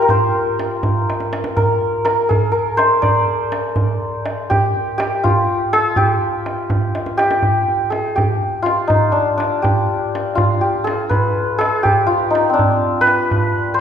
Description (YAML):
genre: Persian modal ensemble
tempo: 82 BPM (dotted quarters)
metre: 6/8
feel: straight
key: G dastgah shur, G dastgah homayun from 7.4 s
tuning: A4 = 438 Hz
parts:
  - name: santur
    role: melody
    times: 0.0-13.8 s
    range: C4 to D5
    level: -16 LUFS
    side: left 1 dB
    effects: none
  - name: tombak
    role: percussion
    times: 0.1-13.7 s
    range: none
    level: -20 LUFS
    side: right 2 dB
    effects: none
room: wet scoring stage reverb, RT60 1.8 s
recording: recorded in a church or concert hall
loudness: -15 LUFS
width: side -8 dB against mid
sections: 0.0-7.4 A section; 7.4-13.8 B section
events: drum fill 1.1-1.6, 6.9-7.4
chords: none